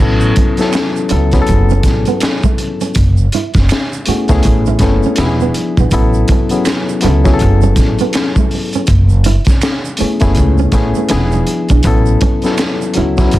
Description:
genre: R&B, neo-soul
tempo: 81 BPM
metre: 4/4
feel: swing 60% on 16ths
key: unclear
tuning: A4 = 440 Hz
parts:
  - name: bright reed electric piano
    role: accompaniment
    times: 0.0-13.4 s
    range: F3 to B4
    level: -15 LUFS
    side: left 3 dB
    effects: none
  - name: upright bass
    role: bass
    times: 0.0-13.4 s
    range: E1 to C#2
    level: -13 LUFS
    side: equal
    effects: none
  - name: tube shaker and finger snaps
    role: percussion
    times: 0.2-13.4 s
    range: none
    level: -29 LUFS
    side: right 10 dB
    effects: none
  - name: nylon-string guitar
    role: second line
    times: 0.4-13.1 s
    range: A3 to F#4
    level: -19 LUFS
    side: right 7 dB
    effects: none
  - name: crunchy breakbeat drum kit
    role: drums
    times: 0.4-13.4 s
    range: hi-hat, kick drum, snare drum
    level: -14 LUFS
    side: equal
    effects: none
room: little or no reverb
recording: dense, heavily limited modern master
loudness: -10 LUFS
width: side -16 dB against mid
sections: 0.0-13.4 A section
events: none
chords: 0.0 F#m11; 5.2 E7b9; 5.9 F#m11; 11.1 E7b9; 11.8 A6

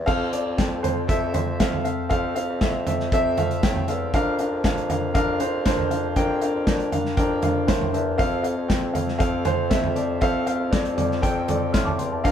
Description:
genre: piano-driven pop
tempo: 118 BPM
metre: 4/4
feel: straight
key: F major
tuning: A4 = 436 Hz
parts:
  - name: dark upright piano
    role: accompaniment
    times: 0.0-12.3 s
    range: C4 to F6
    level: -23 LUFS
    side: left 1 dB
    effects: none
  - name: warm bassoon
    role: bass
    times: 0.0-12.3 s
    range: E2 to A2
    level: -29 LUFS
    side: equal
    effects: none
  - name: modern studio drum kit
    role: drums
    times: 0.1-12.3 s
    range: crash cymbal, hi-hat, kick drum, snare drum, toms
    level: -24 LUFS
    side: equal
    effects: none
room: moderate large studio reverb, RT60 1.3 s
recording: band playing live in one room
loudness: -20 LUFS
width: side -9 dB against mid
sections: 0.1-12.3 A section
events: none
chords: 0.1 F; 4.1 Bb/F; 8.2 F

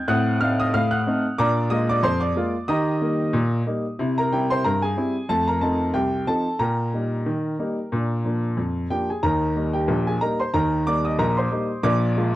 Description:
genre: ragtime piano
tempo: 92 BPM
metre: 2/4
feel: swing 54% on 16ths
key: Eb major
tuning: A4 = 440 Hz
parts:
  - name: clear baby grand piano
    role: solo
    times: 0.0-12.4 s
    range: Bb1 to F#6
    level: -20 LUFS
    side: equal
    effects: none
room: light reverb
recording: dry, close 1970s-style studio recording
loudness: -20 LUFS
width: side -15 dB against mid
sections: 0.0-9.2 A section; 9.2-12.4 B section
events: none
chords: 0.1 Adim7; 1.4 Bb7; 2.7 Eb; 4.0 C7; 5.3 F7; 6.6 Eb/Bb; 7.9 Bb; 9.2 Eb; 11.8 Bb7

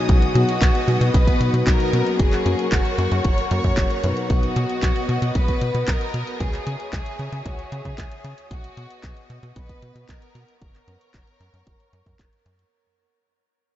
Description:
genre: italo disco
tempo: 114 BPM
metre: 4/4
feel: straight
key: B major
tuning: A4 = 440 Hz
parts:
  - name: warm studio string section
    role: sustained chords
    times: 0.0-12.7 s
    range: B3 to D#6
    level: -30 LUFS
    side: equal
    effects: low-pass filter
  - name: tine electric piano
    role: stabs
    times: 0.0-4.5 s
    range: B2 to B4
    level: -25 LUFS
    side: left 2 dB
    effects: medium tremolo, diffuse ambient delay
  - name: rich studio violin section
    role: melody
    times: 0.1-12.4 s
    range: F#4 to C#5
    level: -28 LUFS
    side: left 1 dB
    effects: tape echo
  - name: tight sequencer bass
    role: bass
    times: 0.1-12.6 s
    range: F#1 to C#3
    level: -23 LUFS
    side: equal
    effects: none
  - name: electronic kick drum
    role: drums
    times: 0.1-12.3 s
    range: none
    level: -20 LUFS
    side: equal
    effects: none
  - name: house drum kit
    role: drums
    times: 0.1-12.7 s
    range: handclaps, hi-hat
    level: -32 LUFS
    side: equal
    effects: none
room: moderate huge ambient reverb, RT60 7.4 s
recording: dreamy mix soaked in reverb, nothing above 7.6 kHz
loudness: -18 LUFS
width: side -13 dB against mid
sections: 0.0-12.7 A section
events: fade-out 0.0-12.7; filter sweep on string section 0.0-12.7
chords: 0.1 B; 2.2 F#; 4.3 B; 6.4 C#madd9; 8.5 B; 10.6 F#

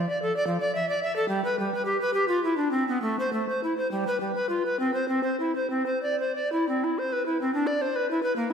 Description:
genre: classical, baroque-style fantasia for unaccompanied recorder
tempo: 59-74 BPM (dotted quarters)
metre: 6/8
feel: rubato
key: C major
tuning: A4 = 438 Hz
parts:
  - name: bright bass recorder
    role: solo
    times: 0.0-8.5 s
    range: F3 to E5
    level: -24 LUFS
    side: equal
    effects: none
room: wet scoring stage reverb, RT60 1.9 s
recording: recorded in a church or concert hall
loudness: -24 LUFS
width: side -7 dB against mid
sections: 0.0-6.7 A section; 6.7-8.5 B section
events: none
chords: none

